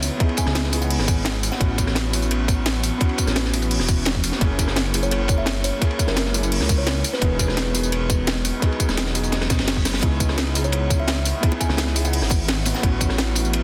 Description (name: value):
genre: liquid drum and bass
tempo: 171 BPM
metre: 4/4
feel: straight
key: C# minor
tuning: A4 = 443 Hz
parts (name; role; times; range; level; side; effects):
- felt-muted upright piano; accompaniment; 0.0-13.6 s; A#3 to G#4; -30 LUFS; equal; none
- shimmering ambient pad; sustained chords; 0.1-13.6 s; E3 to D#5; -38 LUFS; equal; none
- dark detuned saw bass; bass; 0.0-13.6 s; E1 to C#2; -26 LUFS; equal; none
- crunchy breakbeat drum kit; drums; 0.0-13.6 s; hi-hat, ride cymbal, snare drum; -30 LUFS; equal; high-pass filter on cymbals, high-pass filter on hats, high-pass filter on snare, high-pass filter on room
- drum and bass drum kit; drums; 0.0-13.6 s; hi-hat, rim click, snare drum, tambourine; -28 LUFS; equal; overdrive
- electronic kick drum; drums; 0.2-13.1 s; none; -23 LUFS; equal; overdrive
- kalimba; melody; 0.4-1.6, 5.0-7.6, 10.6-12.9 s; A#4 to G#5; -34 LUFS; equal; dub echo
- reverse cymbal; sound effects; 9.6-10.0 s; none; -37 LUFS; equal; none
- bongos; percussion; 11.5-12.7 s; none; -33 LUFS; equal; none
room: light reverb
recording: dense, heavily limited modern master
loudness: -21 LUFS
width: mono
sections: 0.0-13.6 A section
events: none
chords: 0.0 C#m9; 1.6 A69; 4.4 F#9; 7.0 Emaj9; 10.0 C#m9; 12.8 A69